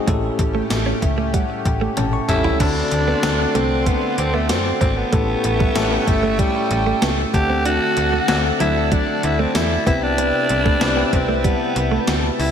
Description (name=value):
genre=1980s-style pop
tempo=95 BPM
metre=4/4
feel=straight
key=D mixolydian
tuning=A4 = 440 Hz
part: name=bell-like tine electric piano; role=accompaniment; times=0.0-12.5 s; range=A2 to C#6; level=-23 LUFS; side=left 4 dB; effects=fast stereo tremolo, slapback echo
part: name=chorused pulse-width pad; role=sustained chords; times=0.0-12.5 s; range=A3 to C#6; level=-27 LUFS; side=equal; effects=none
part: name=direct-recorded clean electric guitar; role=riff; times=0.1-12.3 s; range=F#3 to E4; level=-27 LUFS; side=right 6 dB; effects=wide subtle chorus, slapback echo
part: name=slap-like FM bass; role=bass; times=0.1-12.5 s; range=G1 to F#2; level=-23 LUFS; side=equal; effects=none
part: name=gated 80s digital drum machine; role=drums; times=0.1-12.5 s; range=crash cymbal, hi-hat, kick drum, snare drum, tambourine, toms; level=-22 LUFS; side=equal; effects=gated reverb, gated reverb snare
part: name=raspy alto saxophone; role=melody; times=2.3-12.5 s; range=G3 to G4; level=-21 LUFS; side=right 1 dB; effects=slapback echo
room=wet lush hall reverb, RT60 2.2 s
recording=big arena sound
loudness=-16 LUFS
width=side -8 dB against mid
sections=0.0-2.6 A section; 2.6-12.5 B section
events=tine electric piano fill 0.7-2.6; drum fill 2.0-2.6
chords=0.1 A7; 2.6 D7; 5.1 A7; 7.3 D7; 9.9 Cmaj7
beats=| 0.08 0.71 1.34 1.97 | 2.60 3.23 3.87 4.50 | 5.13 5.76 6.39 7.02 | 7.66 8.29 8.92 9.55 | 10.18 10.81 11.44 12.08